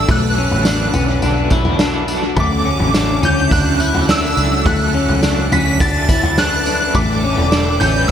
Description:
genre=dream pop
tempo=105 BPM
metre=4/4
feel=straight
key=unclear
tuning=A4 = 438 Hz
part: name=shimmering bell with halo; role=melody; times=0.0-8.1 s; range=D6 to B6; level=-20 LUFS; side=right 1 dB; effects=ensemble chorus, tape echo
part: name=crunchy overdriven guitar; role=accompaniment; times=0.0-8.1 s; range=A2 to A4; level=-24 LUFS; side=right 3 dB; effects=tremolo, wide subtle chorus, tape echo
part: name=string machine, cellos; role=sustained chords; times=0.0-8.1 s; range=C#4 to E6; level=-25 LUFS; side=right 1 dB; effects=ensemble chorus
part: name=clean electric guitar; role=arpeggios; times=0.0-8.1 s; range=A3 to E4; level=-21 LUFS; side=left 6 dB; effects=analog chorus, tape echo
part: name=vintage muted fingered electric bass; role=bass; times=0.0-8.1 s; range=E1 to D2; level=-20 LUFS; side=equal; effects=none
part: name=twinkling granular texture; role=texture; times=0.0-8.1 s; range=E4 to B4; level=-29 LUFS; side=equal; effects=built-in reverb, tape echo
part: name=raw garage drum kit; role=drums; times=0.1-8.1 s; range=kick drum, snare drum, tambourine, toms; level=-18 LUFS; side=equal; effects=tape echo
room=light reverb, small room ambience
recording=echo-heavy mix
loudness=-13 LUFS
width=side -9 dB against mid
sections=0.0-8.1 A section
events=none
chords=0.1 Bm7; 6.9 A7sus4

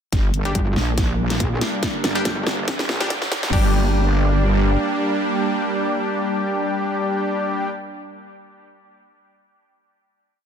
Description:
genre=heavy wobble dubstep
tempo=141 BPM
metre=4/4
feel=swing 54% on 16ths, half-time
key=G minor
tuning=A4 = 440 Hz
part: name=supersaw pad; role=sustained chords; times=0.1-7.7 s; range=G3 to D4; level=-25 LUFS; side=right 2 dB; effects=sidechain pumping, low-pass filter
part: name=wobble bass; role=bass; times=0.1-4.8 s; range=G1 to Bb1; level=-20 LUFS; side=equal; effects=chorus, overdrive
part: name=dubstep drum kit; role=drums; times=0.1-3.6 s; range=crash cymbal, hi-hat, snare drum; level=-25 LUFS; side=equal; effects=none
part: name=electronic kick drum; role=drums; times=0.1-3.6 s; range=none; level=-23 LUFS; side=equal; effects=none
part: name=riser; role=sound effects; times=1.7-3.5 s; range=none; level=-31 LUFS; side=left 1 dB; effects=none
part: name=supersaw stab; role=stabs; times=0.5-7.7 s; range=G3 to G4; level=-24 LUFS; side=left 2 dB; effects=dub echo
part: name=metallic wobble bass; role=bass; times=0.6-3.5 s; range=G1 to Bb1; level=-24 LUFS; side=equal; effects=distortion, chorus, overdrive
room=light reverb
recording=dense, heavily limited modern master, high-pass filter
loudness=-18 LUFS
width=side -8 dB against mid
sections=0.1-3.5 build; 3.5-6.9 final chord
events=build-up 0.1-3.5; drum fill 0.1-3.5; filter sweep on supersaw synth 0.1-3.5; filter sweep 0.1-3.5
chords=0.1 Gm

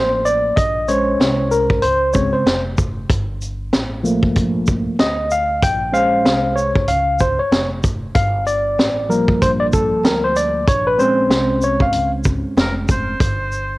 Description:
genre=hip hop, jazz-hop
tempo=95 BPM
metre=4/4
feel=swing 59% on 16ths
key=unclear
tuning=A4 = 440 Hz
part: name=tine electric piano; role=accompaniment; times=0.0-13.2 s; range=Db3 to G5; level=-16 LUFS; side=equal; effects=medium stereo tremolo, cassette tape
part: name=upright bass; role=bass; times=0.0-13.8 s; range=F1 to D2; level=-25 LUFS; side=equal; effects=none
part: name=vintage drum kit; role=drums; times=0.3-13.7 s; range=hi-hat, kick drum, shaker, snare drum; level=-19 LUFS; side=equal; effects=cassette tape
part: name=warm oboe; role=melody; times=12.6-13.8 s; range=Bb4 to C5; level=-24 LUFS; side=right 1 dB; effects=cassette tape
room=light reverb, studio ambience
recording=home recording on cassette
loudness=-15 LUFS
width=side -20 dB against mid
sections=0.0-13.2 A section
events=tine electric piano solo 0.0-13.2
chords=0.0 Gm9 (rootless); 0.6 Bbm9; 3.1 Gm9; 5.6 Bbm9; 8.2 Gm9; 10.7 Bbm9; 13.2 N.C.

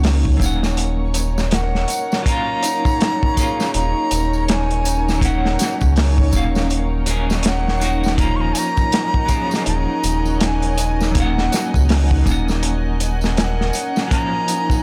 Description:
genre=trip hop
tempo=81 BPM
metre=4/4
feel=swing 60% on 16ths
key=Eb minor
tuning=A4 = 442 Hz
part: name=bright reedy wooden flute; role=melody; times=0.0-14.8 s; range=Gb5 to Db6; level=-27 LUFS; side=equal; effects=tape echo
part: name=clean electric guitar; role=accompaniment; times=0.0-14.8 s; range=F3 to Gb5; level=-29 LUFS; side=equal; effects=tremolo
part: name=warm studio string section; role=sustained chords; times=0.0-14.8 s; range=Eb4 to Ab5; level=-33 LUFS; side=equal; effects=vintage 12-bit sampler grit
part: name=concert harp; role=arpeggios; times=0.0-14.8 s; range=Db4 to Eb5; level=-30 LUFS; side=equal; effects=vintage 12-bit sampler grit, tape echo
part: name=round analog bass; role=bass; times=0.0-13.7 s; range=Eb1 to Db2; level=-21 LUFS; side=equal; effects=transformer saturation
part: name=crunchy breakbeat drum kit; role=drums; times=0.0-14.8 s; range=hi-hat, kick drum, snare drum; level=-23 LUFS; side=equal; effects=none
part: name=tambourine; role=percussion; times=0.0-14.8 s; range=none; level=-34 LUFS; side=equal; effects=none
part: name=backwards swelling texture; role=texture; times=0.0-14.8 s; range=Db4 to Gb5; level=-33 LUFS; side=equal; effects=built-in reverb
room=little or no reverb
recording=dry, gritty hardware recording, transformer saturation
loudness=-18 LUFS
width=mono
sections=0.0-14.8 A section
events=none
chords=0.0 Ebm7

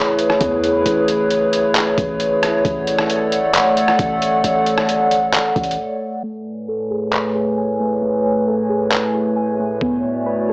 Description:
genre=hip hop, atmospheric cloud-rap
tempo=134 BPM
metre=4/4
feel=half-time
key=A major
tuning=A4 = 440 Hz
part: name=warbly tape-like pad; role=sustained chords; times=0.0-10.5 s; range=A2 to G#5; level=-17 LUFS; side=equal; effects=chorus, built-in reverb, sidechain pumping, low-pass filter, cassette tape
part: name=warm 808-style bass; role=bass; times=0.0-5.8 s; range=A1 to E2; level=-27 LUFS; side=equal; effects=none
part: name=trip hop sampler-style drum kit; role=drums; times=0.2-9.9 s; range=handclaps, hi-hat, kick drum, rim click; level=-20 LUFS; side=equal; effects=cassette tape
part: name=muted felt-like synth keys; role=arpeggios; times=6.2-10.5 s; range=A3 to G#5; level=-21 LUFS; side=equal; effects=chorus, low-pass filter, cassette tape, analog delay
room=light reverb, digital ambience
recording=home recording on cassette, small speaker sound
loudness=-15 LUFS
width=side -28 dB against mid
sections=0.0-6.2 A section; 6.2-10.5 B section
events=break 5.8-6.2; filter sweep 6.2-10.5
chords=0.0 Amaj7; 2.6 Dmaj7/A; 6.2 Amaj7; 9.8 Bm7/A

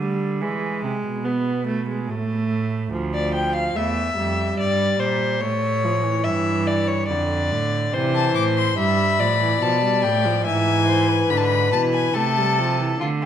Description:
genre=classical, baroque-style fugue for string quartet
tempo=72 BPM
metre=3/4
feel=straight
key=unclear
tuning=A4 = 440 Hz
part: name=warm viola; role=accompaniment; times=0.0-13.3 s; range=D3 to B3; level=-25 LUFS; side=right 2 dB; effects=none
part: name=rich cello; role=bass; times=0.0-13.3 s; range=D2 to E3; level=-24 LUFS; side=right 4 dB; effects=none
part: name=rich violin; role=second line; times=3.1-13.3 s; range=F4 to G5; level=-23 LUFS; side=left 4 dB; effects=none
part: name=rich violin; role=melody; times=8.1-13.0 s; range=G5 to D6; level=-23 LUFS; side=left 8 dB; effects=none
room=wet recital hall reverb, RT60 1.7 s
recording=none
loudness=-19 LUFS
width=side -9 dB against mid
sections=0.0-13.0 A section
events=none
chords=0.4 E; 2.1 N.C.; 2.9 Dm; 4.6 Gmadd11; 5.4 A7; 7.1 Dm/F; 7.9 Am; 9.6 Bm7b5; 10.5 E7/G#; 12.2 Am/C

